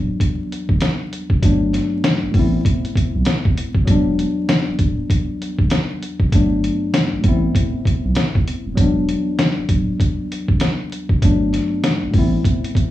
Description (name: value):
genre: hip hop, boom-bap hip-hop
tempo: 98 BPM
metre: 4/4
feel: swing 60% on 16ths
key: E minor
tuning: A4 = 441 Hz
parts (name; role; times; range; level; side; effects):
- tine electric piano; accompaniment; 0.0-12.9 s; E2 to E4; -20 LUFS; left 1 dB; medium stereo tremolo, high-pass filter, low-pass filter
- soft dub sub bass; bass; 0.0-12.4 s; D1 to B1; -22 LUFS; equal; none
- trip hop sampler-style drum kit; drums; 0.2-12.9 s; hi-hat, kick drum, snare drum; -18 LUFS; equal; none
room: moderate small room reverb, RT60 0.5 s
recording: rough home demo mix, vinyl crackle, small room ambience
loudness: -16 LUFS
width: side -14 dB against mid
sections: 0.0-12.9 A section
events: none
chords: 0.0 Em9; 1.4 Gmaj9; 2.3 Am7; 3.9 Em9; 6.3 Gmaj9; 7.2 Am7; 8.8 Em9; 11.2 Gmaj9; 12.1 Am7